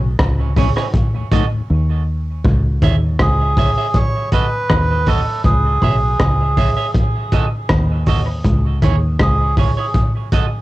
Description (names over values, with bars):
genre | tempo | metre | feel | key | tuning
dub reggae | 80 BPM | 4/4 | straight | C# minor | A4 = 440 Hz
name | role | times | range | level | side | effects
mellow tonewheel organ | accompaniment | 0.0-1.6 s | D#2 to D#4 | -24 LUFS | left 7 dB | slow rotary speaker
deep dub fingered electric bass | bass | 0.0-9.7 s | B1 to D#2 | -17 LUFS | equal | transformer saturation
crunchy breakbeat drum kit | drums | 0.2-10.5 s | hi-hat, kick drum, rim click | -17 LUFS | equal | cassette tape
clean electric guitar | accompaniment | 0.6-10.5 s | E4 to E5 | -26 LUFS | right 9 dB | dub echo
melodica | melody | 3.2-9.6 s | G#4 to C#5 | -21 LUFS | right 2 dB | cassette tape, dub echo
room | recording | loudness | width
light reverb | home recording on cassette | -14 LUFS | side -17 dB against mid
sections
0.0-2.4 A section; 2.4-10.6 B section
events
break 0.0-2.4; drums muted 1.7-2.4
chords
0.0 C#m; 0.9 D#dim; 2.4 C#m; 3.9 D#dim; 5.4 C#m; 6.9 D#dim; 8.4 C#m; 9.9 D#dim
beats
0.19 0.94 1.69 | 2.44 3.19 3.94 4.69 | 5.44 6.20 6.95 7.70 | 8.45 9.20 9.95